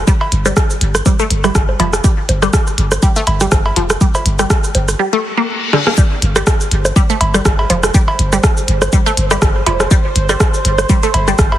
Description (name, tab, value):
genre	minimal techno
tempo	122 BPM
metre	4/4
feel	swing 55% on 16ths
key	unclear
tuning	A4 = 438 Hz
part	punchy sub bass	bass	0.0-11.6 s	F1 to G1	-16 LUFS	equal	sidechain pumping
part	resonant blip pluck	riff	0.1-11.3 s	D3 to Bb3	-19 LUFS	equal	phaser, sidechain pumping, dub echo
part	electronic kick drum	drums	0.1-11.5 s	none	-12 LUFS	equal	none
part	minimal click drum kit	drums	0.1-11.5 s	hi-hat, rim click, shaker	-19 LUFS	equal	none
part	electronic cowbell, rim click and bongos	percussion	0.2-11.6 s	none	-19 LUFS	right 2 dB	tape echo
part	reverse cymbal	sound effects	5.2-6.0 s	none	-22 LUFS	left 5 dB	none
part	bubbling stepped-filter texture	texture	6.7-11.6 s	C5	-24 LUFS	right 3 dB	chorus, built-in reverb, sidechain pumping
room	light reverb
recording	heavily compressed radio sound, multiband compression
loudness	-11 LUFS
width	side -13 dB against mid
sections	0.0-6.0 A section; 6.0-11.6 B section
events	reverse cymbal 5.2-6.0; drum fill 5.7; drop 6.0-11.6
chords	none